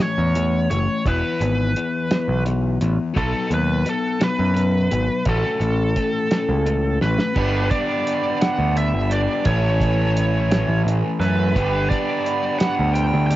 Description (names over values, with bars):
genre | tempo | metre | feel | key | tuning
indie rock | 57 BPM (dotted quarters) | 6/8 | straight | unclear | A4 = 441 Hz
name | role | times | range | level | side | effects
biting lead guitar | melody | 0.0-13.4 s | A4 to G5 | -24 LUFS | right 1 dB | overdrive, cassette tape, plate reverb
sludgy distorted guitar | riff | 0.0-13.4 s | E3 to A4 | -24 LUFS | left 6 dB | overdrive, cassette tape
growling picked electric bass | bass | 0.2-13.4 s | E1 to F#2 | -20 LUFS | right 1 dB | overdrive
cloth-damped thuddy drum kit | drums | 0.4-13.4 s | crash cymbal, hi-hat, kick drum, snare drum | -23 LUFS | right 1 dB | none
raw garage guitar | riff | 7.4-13.4 s | E3 to A4 | -26 LUFS | right 9 dB | overdrive, lush chorus, cassette tape
room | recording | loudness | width
light reverb | home recording on cassette, nothing above 7.8 kHz | -18 LUFS | side -15 dB against mid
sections
0.0-7.4 A section; 7.4-13.4 B section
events
drum fill 7.0-7.4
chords
0.0 A; 1.1 E; 3.2 B; 5.3 F#m/A; 7.4 G; 9.5 A; 11.6 G